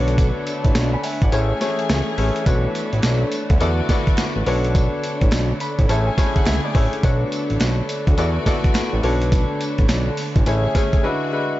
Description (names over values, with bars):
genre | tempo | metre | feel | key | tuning
R&B, new jack swing | 105 BPM | 4/4 | swing 63% on 16ths | B dorian | A4 = 436 Hz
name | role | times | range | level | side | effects
clear concert grand piano | accompaniment | 0.0-11.6 s | G#3 to B5 | -24 LUFS | left 2 dB | none
warm studio string section | sustained chords | 0.0-11.6 s | D3 to G#4 | -27 LUFS | equal | none
fat analog bass | bass | 0.0-10.7 s | A1 to E2 | -20 LUFS | equal | none
boom bap sampler-style drum kit | drums | 0.1-11.0 s | hi-hat, kick drum, snare drum, tambourine | -20 LUFS | equal | none
group handclap | percussion | 3.0-10.1 s | none | -40 LUFS | right 6 dB | none
room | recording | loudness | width
digital ambience | nothing above 7.8 kHz | -17 LUFS | side -16 dB against mid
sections
0.0-11.6 A section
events
kick muted 1.3-2.5; grand piano fill 5.3-7.0; break 11.0-11.6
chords
0.0 Bm9; 1.3 Amaj7; 2.5 Bm9; 3.6 E9sus4; 4.5 Bm9; 5.9 Amaj7; 7.0 Bm9; 8.2 E9sus4; 9.0 Bm9; 10.5 Amaj7; 11.0 E9